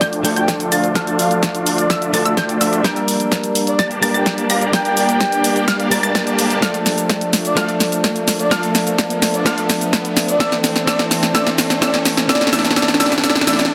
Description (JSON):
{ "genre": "EDM, festival progressive house", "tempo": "127 BPM", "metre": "4/4", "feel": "straight", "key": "D minor", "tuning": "A4 = 444 Hz", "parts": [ { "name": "direct-recorded clean electric guitar", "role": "accompaniment", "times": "0.0-13.7 s", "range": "E3 to Bb4", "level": "-24 LUFS", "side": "equal", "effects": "spring reverb, sidechain pumping" }, { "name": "lush unison pad", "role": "sustained chords", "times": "0.0-13.7 s", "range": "E3 to D4", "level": "-29 LUFS", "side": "equal", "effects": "none" }, { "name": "unison pluck", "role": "arpeggios", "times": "0.0-13.6 s", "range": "E6 to Bb6", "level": "-26 LUFS", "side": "equal", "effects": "sidechain pumping, tape echo" }, { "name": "supersaw chords", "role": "riff", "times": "0.0-13.6 s", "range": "A3 to Bb5", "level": "-26 LUFS", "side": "equal", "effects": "sidechain pumping, low-pass filter, tape echo" }, { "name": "fat analog bass", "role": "bass", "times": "0.0-13.7 s", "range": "G1 to D2", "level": "-30 LUFS", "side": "equal", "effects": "none" }, { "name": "electronic kick drum", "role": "drums", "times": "0.0-13.3 s", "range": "none", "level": "-25 LUFS", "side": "equal", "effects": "high-pass filter on kick" }, { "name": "house drum kit", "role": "drums", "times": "0.0-13.7 s", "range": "hi-hat, shaker, snare drum", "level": "-21 LUFS", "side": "equal", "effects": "none" }, { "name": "riser", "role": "sound effects", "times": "3.5-13.7 s", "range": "none", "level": "-29 LUFS", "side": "equal", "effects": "none" }, { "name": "breathy flute-like synth lead", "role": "melody", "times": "0.4-13.6 s", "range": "D5 to G5", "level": "-26 LUFS", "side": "equal", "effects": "lush chorus, cassette tape, tape echo" } ], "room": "light reverb, digital ambience", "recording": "heavily compressed radio sound", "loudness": "-17 LUFS", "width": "mono", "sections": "0.0-13.7 A section", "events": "build-up 0.0-13.7; drum fill 0.0-13.7; filter sweep on supersaw synth 0.0-13.7", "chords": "0.0 Dm; 2.8 Gm; 6.6 Dm; 10.4 Am", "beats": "0.01 0.48 | 0.95 1.43 1.90 2.37 | 2.84 3.32 3.79 4.26 | 4.73 5.21 5.68 6.15 | 6.62 7.10 7.57 8.04 | 8.51 8.99 9.46 9.93 | 10.40 10.88 11.35 11.82 | 12.29 12.77 13.24 13.71" }